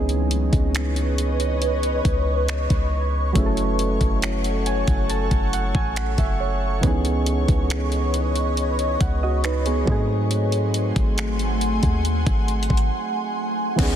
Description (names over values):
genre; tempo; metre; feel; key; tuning
contemporary R&B; 69 BPM; 4/4; straight; C# minor; A4 = 440 Hz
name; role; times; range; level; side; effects
soft electric-piano-like synth keys; accompaniment; 0.0-14.0 s; D#3 to A5; -26 LUFS; right 3 dB; chorus
ethereal airy pad; sustained chords; 0.0-14.0 s; A3 to C#6; -26 LUFS; equal; ensemble chorus, built-in reverb, phaser
warm 808-style bass; bass; 0.0-14.0 s; F#1 to G#2; -23 LUFS; equal; none
smooth R&B drum kit; drums; 0.1-14.0 s; crash cymbal, finger snaps, hi-hat, kick drum; -23 LUFS; equal; soft clipping on snare
downlifter; sound effects; 13.8-14.0 s; none; -29 LUFS; equal; none
guzheng; texture; 13.8-14.0 s; F#4; -33 LUFS; left 4 dB; none
room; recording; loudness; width
little or no reverb; dense, heavily limited modern master; -19 LUFS; side -10 dB against mid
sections
0.0-13.8 A section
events
synth keys fill 4.2-6.8; break 12.9-13.8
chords
0.0 C#m9; 3.4 F#m7; 6.8 C#m9; 9.9 G#7b9